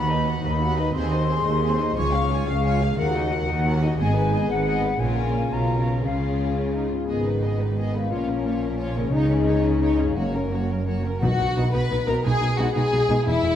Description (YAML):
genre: cinematic, heroic adventure film score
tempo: 118 BPM (dotted quarters)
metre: 6/8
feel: straight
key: G# dorian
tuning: A4 = 439 Hz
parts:
  - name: clear symphonic violin section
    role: melody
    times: 0.0-13.6 s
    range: G#4 to B5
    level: -36 LUFS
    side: left 3 dB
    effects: none
  - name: small flute group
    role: second line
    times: 0.0-6.6 s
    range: E#5 to C#6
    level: -27 LUFS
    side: left 3 dB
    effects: none
  - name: warm symphonic violin section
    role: second line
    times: 0.0-13.6 s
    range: C#4 to E#5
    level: -29 LUFS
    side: left 2 dB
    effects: none
  - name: warm symphonic viola section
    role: accompaniment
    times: 0.0-13.5 s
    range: G#3 to G#4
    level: -33 LUFS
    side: right 1 dB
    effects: none
  - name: concert harp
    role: arpeggios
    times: 0.0-13.6 s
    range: E2 to D#5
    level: -29 LUFS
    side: left 5 dB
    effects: none
  - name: clear symphonic double bass section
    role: bass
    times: 0.0-13.5 s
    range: E1 to D#2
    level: -26 LUFS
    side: right 2 dB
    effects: none
  - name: rich symphonic cello section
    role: bass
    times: 0.0-13.5 s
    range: C#2 to C#3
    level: -27 LUFS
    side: right 2 dB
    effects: none
  - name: mellow French horn section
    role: sustained chords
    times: 7.1-13.2 s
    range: D#3 to D#4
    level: -28 LUFS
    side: left 5 dB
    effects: none
  - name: timpani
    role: percussion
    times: 11.2-11.7 s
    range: B2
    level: -27 LUFS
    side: left 1 dB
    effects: none
  - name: warm trombone section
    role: sustained chords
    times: 11.6-13.2 s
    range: B2 to B3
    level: -36 LUFS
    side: right 4 dB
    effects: none
room: moderate scoring stage reverb, RT60 1.6 s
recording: dark, warm production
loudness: -20 LUFS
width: side -10 dB against mid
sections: 0.0-7.1 A section; 7.1-11.2 B section; 11.2-13.6 C section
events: none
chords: 0.0 B/D#; 0.9 G#/D#; 2.0 C#; 3.0 D#m; 4.0 G#m; 5.0 A#m7; 6.1 C#; 7.1 G#m; 8.1 A#m; 9.1 C#sus2; 10.2 F#; 11.2 B; 12.3 G#m/B